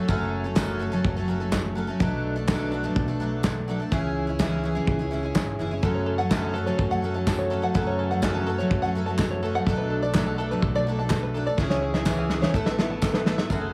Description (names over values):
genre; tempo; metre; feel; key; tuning
indie folk with a building arrangement; 125 BPM; 4/4; straight; unclear; A4 = 440 Hz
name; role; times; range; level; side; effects
picked twelve-string acoustic guitar; accompaniment; 0.0-13.7 s; F#2 to A4; -30 LUFS; equal; none
mellow brass ensemble; sustained chords; 0.0-13.5 s; C#3 to G#4; -37 LUFS; equal; none
upright bass; bass; 0.1-13.7 s; F#1 to F#2; -33 LUFS; equal; none
natural country drum kit; drums; 0.1-13.6 s; kick drum, snare drum; -28 LUFS; equal; none
group handclap; percussion; 0.6-13.1 s; none; -40 LUFS; equal; none
tambourine; percussion; 0.6-13.6 s; none; -46 LUFS; equal; none
open-back banjo; arpeggios; 5.8-13.7 s; G#4 to A5; -32 LUFS; equal; none
fingerpicked steel-string acoustic guitar; accompaniment; 13.5-13.7 s; none; barely audible; none; none
room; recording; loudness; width
light reverb, small room ambience; studio reverb; -25 LUFS; mono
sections
0.0-13.5 A section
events
drum fill 11.6-13.5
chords
0.0 F#m; 2.0 Bm7; 3.9 C#m; 5.8 F#m; 9.7 Bm7; 11.6 C#m; 12.5 Asus2